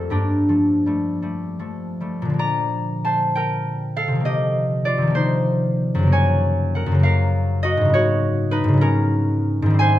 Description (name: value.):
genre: classical, solo harp piece.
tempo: 48-68 BPM (dotted quarters).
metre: 6/8.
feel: rubato.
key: unclear.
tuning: A4 = 440 Hz.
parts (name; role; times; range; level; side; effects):
concert harp; solo; 0.0-10.0 s; F2 to Bb5; -17 LUFS; equal; none.
room: moderate stone room reverb, RT60 1.4 s.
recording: close, detailed microphones.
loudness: -18 LUFS.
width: side -13 dB against mid.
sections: 0.0-2.4 A section; 2.4-10.0 B section.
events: none.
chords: 0.1 Gm9; 2.4 Bbmaj7; 4.3 Cm11; 6.1 Gbmaj7; 7.9 Abm11.